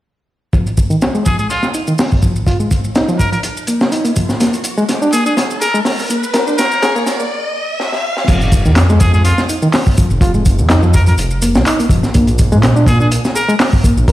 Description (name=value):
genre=breakbeat, breaks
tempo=124 BPM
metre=4/4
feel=swing 54% on 16ths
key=F dorian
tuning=A4 = 444 Hz
part: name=reed electric piano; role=riff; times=0.5-14.1 s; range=Eb3 to Bb4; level=-17 LUFS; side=equal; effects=low-pass filter, digital delay
part: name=crunchy breakbeat drum kit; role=drums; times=0.5-14.1 s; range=crash cymbal, hi-hat, kick drum, snare drum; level=-14 LUFS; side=equal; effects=low-pass filter on kick, low-pass filter on hats, low-pass filter on cymbals, low-pass filter on snare, low-pass filter on room
part: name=electronic shaker and handclaps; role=drums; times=0.5-14.1 s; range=none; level=-24 LUFS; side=equal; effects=none
part: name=riser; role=sound effects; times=1.9-8.3 s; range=none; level=-24 LUFS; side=equal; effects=none
part: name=trumpet with straight mute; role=melody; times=1.3-13.5 s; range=F4 to Bb4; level=-20 LUFS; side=equal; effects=small speaker sound, digital delay
part: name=dark detuned saw bass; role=bass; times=8.3-14.1 s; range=Eb1 to Bb2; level=-13 LUFS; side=equal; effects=none
room=light reverb, studio reverb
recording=played on a big sound system in a bare room, stone room reverb, high-pass filter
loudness=-11 LUFS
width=side -14 dB against mid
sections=0.5-8.3 A section; 8.3-14.1 B section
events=build-up 0.5-8.3; filter sweep on drum 0.5-8.3; filter sweep on reed electric piano 0.5-8.3; filter sweep 0.5-8.3; riser 2.2-8.3; drum fill 4.4-7.3, 7.8-8.3; break 7.3-8.3; drop 8.3-14.1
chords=0.5 Fm7; 4.4 Bb7; 8.3 F7(no3); 12.2 N.C.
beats=| 0.54 1.02 1.50 1.99 | 2.47 2.96 3.44 3.92 | 4.41 4.89 5.38 5.86 | 6.34 6.83 7.31 7.80 | 8.28 8.76 9.25 9.73 | 10.21 10.70 11.18 11.67 | 12.15 12.63 13.12 13.60 | 14.09